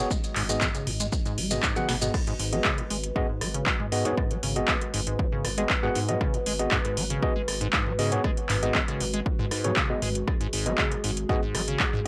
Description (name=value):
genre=acid house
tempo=118 BPM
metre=4/4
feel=straight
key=G# minor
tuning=A4 = 442 Hz
part: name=dark analog pad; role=sustained chords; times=0.0-12.1 s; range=G#3 to D#5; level=-37 LUFS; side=equal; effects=chorus, sidechain pumping
part: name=acid bass, square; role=riff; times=0.0-12.0 s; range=G#2 to G#3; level=-35 LUFS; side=equal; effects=tube saturation, lush chorus, sidechain pumping, tape echo
part: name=overdriven tine electric piano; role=stabs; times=0.0-11.4 s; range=B3 to F#5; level=-33 LUFS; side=equal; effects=tape echo
part: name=round analog bass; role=bass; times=0.0-11.8 s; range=G#1 to G#2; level=-35 LUFS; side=equal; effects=tube saturation, sidechain pumping
part: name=electronic kick drum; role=drums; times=0.1-11.9 s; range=none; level=-31 LUFS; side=equal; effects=none
part: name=maracas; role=percussion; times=0.1-2.1 s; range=none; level=-36 LUFS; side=equal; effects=none
part: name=booming analog drum machine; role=drums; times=0.2-12.0 s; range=crash cymbal, handclaps, hi-hat, rim click, snare drum, toms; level=-31 LUFS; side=equal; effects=overdrive
room=little or no reverb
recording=dry, gritty hardware recording, cassette tape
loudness=-26 LUFS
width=mono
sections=0.0-2.1 A section; 2.1-12.1 B section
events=drum fill 1.8-2.1; drop 2.1-12.1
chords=0.0 G#m7